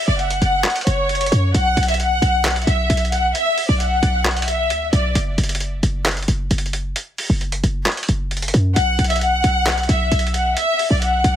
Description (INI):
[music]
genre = hip hop, trap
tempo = 133 BPM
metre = 4/4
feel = half-time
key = B minor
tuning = A4 = 440 Hz
[part]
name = warm studio violin section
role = melody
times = 0.0-5.1, 8.8-11.4 s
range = C#5 to F#5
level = -19 LUFS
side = left 1 dB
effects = digital delay
[part]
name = short 808-style bass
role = bass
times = 0.1-11.4 s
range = F#1 to F#2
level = -19 LUFS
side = equal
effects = none
[part]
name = dusty soul sampler-style drum kit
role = drums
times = 0.2-11.3 s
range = handclaps, hi-hat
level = -23 LUFS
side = right 1 dB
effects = overdrive
[sound]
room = moderate studio ambience, RT60 0.5 s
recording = heavily compressed radio sound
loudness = -16 LUFS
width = side -10 dB against mid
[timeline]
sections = 0.0-11.4 A section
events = break 5.2-8.8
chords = 0.0 F#5; 1.5 B5; 5.2 N.C.; 8.8 B5